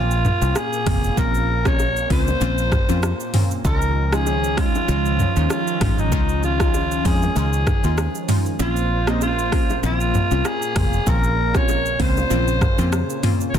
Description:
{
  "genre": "afrobeats",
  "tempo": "97 BPM",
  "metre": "4/4",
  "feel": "swing 55% on 16ths",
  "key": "unclear",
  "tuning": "A4 = 440 Hz",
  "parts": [
    { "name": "raspy alto saxophone", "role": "melody", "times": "0.0-13.6 s", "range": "Eb4 to Db5", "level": "-24 LUFS", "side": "equal", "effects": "digital delay" },
    { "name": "glassy wavetable pluck", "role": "accompaniment", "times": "0.0-13.6 s", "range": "Ab3 to F4", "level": "-26 LUFS", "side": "equal", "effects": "chorus, phaser" },
    { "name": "lush unison pad", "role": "sustained chords", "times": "0.0-13.6 s", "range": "Bb2 to C5", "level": "-29 LUFS", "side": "equal", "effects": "chorus, phaser" },
    { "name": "fingered electric bass", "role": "bass", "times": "0.0-13.6 s", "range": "F1 to F2", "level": "-22 LUFS", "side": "equal", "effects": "none" },
    { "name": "afro-pop drum kit", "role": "drums", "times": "0.1-13.6 s", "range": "hi-hat, kick drum, rim click, shaker, toms", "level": "-22 LUFS", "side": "equal", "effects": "soft clipping on snare" },
    { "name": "bongos and congas", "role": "percussion", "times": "0.3-13.6 s", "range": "none", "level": "-34 LUFS", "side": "left 5 dB", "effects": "none" }
  ],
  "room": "digital ambience",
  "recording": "dense, heavily limited modern master",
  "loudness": "-17 LUFS",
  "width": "side -9 dB against mid",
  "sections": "0.0-13.6 A section",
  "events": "kick muted 8.6-9.2",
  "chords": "0.0 Bbmadd9; 3.6 Dbadd9; 8.6 Bbmadd9",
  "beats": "0.56 | 1.17 1.79 2.41 3.03 | 3.65 4.27 4.88 5.50 | 6.12 6.74 7.36 7.98 | 8.60 9.21 9.83 10.45 | 11.07 11.69 12.31 12.93 | 13.54"
}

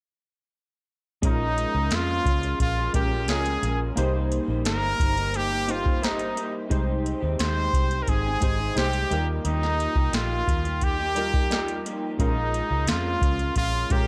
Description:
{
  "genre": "indie pop, bedroom pop",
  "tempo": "88 BPM",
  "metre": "4/4",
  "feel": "straight",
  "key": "Bb dorian",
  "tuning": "A4 = 440 Hz",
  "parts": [
    { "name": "electric guitar through a small old amp", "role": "accompaniment", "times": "1.2-14.1 s", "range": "Bb2 to G4", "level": "-37 LUFS", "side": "equal", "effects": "analog chorus, vibrato effect" },
    { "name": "warm analog keys", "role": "accompaniment", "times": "1.2-14.1 s", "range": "G3 to C5", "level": "-34 LUFS", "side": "equal", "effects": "chorus, cassette tape" },
    { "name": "vintage muted fingered electric bass", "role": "bass", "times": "1.2-14.1 s", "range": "G1 to F2", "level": "-30 LUFS", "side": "equal", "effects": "none" },
    { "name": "soft vintage rhythm box", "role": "drums", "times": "1.2-14.1 s", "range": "hi-hat, kick drum, snare drum", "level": "-29 LUFS", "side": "equal", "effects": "overdrive" },
    { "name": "brilliant trumpet", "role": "melody", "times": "1.3-14.1 s", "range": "Eb4 to C5", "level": "-30 LUFS", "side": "equal", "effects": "analog chorus" }
  ],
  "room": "light reverb, digital ambience",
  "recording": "none",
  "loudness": "-25 LUFS",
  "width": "mono",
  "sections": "1.2-14.1 A section",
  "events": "none",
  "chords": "1.2 Bbm7; 4.0 Cm7; 6.7 Abmaj7/C; 9.1 Ebadd9; 12.2 Bbm7",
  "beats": "| 1.23 1.91 2.60 3.28 | 3.97 4.65 5.34 6.02 | 6.71 7.39 8.08 8.76 | 9.45 10.13 10.82 11.50 | 12.19 12.88 13.56"
}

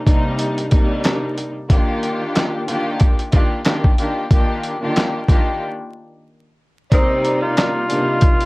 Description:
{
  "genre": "hip hop, boom-bap hip-hop",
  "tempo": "92 BPM",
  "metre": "4/4",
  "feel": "swing 57% on 16ths",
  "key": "C minor",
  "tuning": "A4 = 439 Hz",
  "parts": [
    { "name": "warm studio string section", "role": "accompaniment", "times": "0.0-8.4 s", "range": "C3 to D5", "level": "-21 LUFS", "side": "equal", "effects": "cassette tape, high-pass filter, low-pass filter" },
    { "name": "dusty soul sampler-style drum kit", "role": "drums", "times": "0.1-8.5 s", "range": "handclaps, hi-hat, kick drum, snare drum", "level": "-15 LUFS", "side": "equal", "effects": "overdrive" },
    { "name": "breathy tenor saxophone", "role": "melody", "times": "6.9-8.5 s", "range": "C4 to F4", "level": "-19 LUFS", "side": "equal", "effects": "high-pass filter, low-pass filter" },
    { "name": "warm horn section", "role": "stabs", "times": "6.9-7.1 s", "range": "C4 to Eb5", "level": "-29 LUFS", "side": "equal", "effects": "high-pass filter, low-pass filter, tape echo" }
  ],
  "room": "light reverb",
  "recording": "worn, warbling old tape, cassette tape, vinyl crackle, warbly pitch drift",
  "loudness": "-15 LUFS",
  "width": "side -23 dB against mid",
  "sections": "0.0-6.9 A section; 6.9-8.5 B section",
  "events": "break 5.6-6.9",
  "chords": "0.0 Cm7; 1.7 Ebmaj7; 6.9 Cm7",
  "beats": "0.40 1.05 | 1.70 2.35 3.00 3.66 | 4.31 4.96 5.61 6.26 | 6.92 7.57 8.22"
}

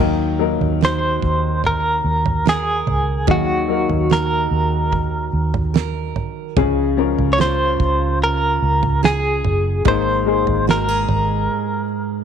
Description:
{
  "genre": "pop ballad",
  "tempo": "73 BPM",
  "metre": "4/4",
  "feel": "straight",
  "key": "unclear",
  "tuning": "A4 = 440 Hz",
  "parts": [
    { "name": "warm upright piano", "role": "accompaniment", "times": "0.0-12.2 s", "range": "Ab2 to Bb4", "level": "-23 LUFS", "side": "left 13 dB", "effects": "none" },
    { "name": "picked steel-string acoustic guitar", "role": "arpeggios", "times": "0.0-12.2 s", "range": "Ab2 to Bb4", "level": "-25 LUFS", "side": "right 11 dB", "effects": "none" },
    { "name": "vintage muted fingered electric bass", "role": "bass", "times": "0.0-11.5 s", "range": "Gb1 to Eb2", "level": "-21 LUFS", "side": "equal", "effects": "none" },
    { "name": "damped 70s drum kit", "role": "drums", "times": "0.6-11.3 s", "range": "kick drum, snare drum, toms", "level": "-21 LUFS", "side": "right 5 dB", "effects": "none" },
    { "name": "direct-recorded clean electric guitar", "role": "melody", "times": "0.8-12.2 s", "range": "Gb4 to Db5", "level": "-20 LUFS", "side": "equal", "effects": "tremolo, slapback echo" }
  ],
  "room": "light reverb",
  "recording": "1960s-style stereo with parts hard left and right",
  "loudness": "-16 LUFS",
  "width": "side -8 dB against mid",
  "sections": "0.0-12.2 A section",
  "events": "break 11.5-12.2",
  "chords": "0.0 Ebm; 6.6 Db; 9.9 Absus2",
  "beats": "0.81 1.64 2.46 | 3.28 4.10 4.92 5.75 | 6.57 7.39 8.21 9.03 | 9.86 10.68 11.50"
}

